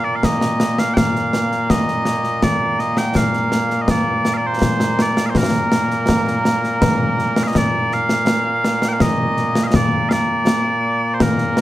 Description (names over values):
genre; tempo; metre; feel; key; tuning
scottish traditional, Scottish pipe music; 82 BPM; 3/4; straight; Bb major; A4 = 438 Hz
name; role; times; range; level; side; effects
mellow small bagpipes; melody; 0.0-11.6 s; Bb2 to G5; -18 LUFS; right 1 dB; none
concert snare drum and concert bass drum; drums; 0.2-11.6 s; none; -18 LUFS; left 1 dB; none
room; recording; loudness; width
moderate studio reverb, RT60 0.6 s; none; -15 LUFS; side -15 dB against mid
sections
0.0-7.5 A section; 7.5-11.6 B section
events
none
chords
none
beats
0.23 | 0.96 1.70 2.43 | 3.16 3.89 4.62 | 5.35 6.09 6.82 | 7.55 8.28 9.01 | 9.74 10.48 11.21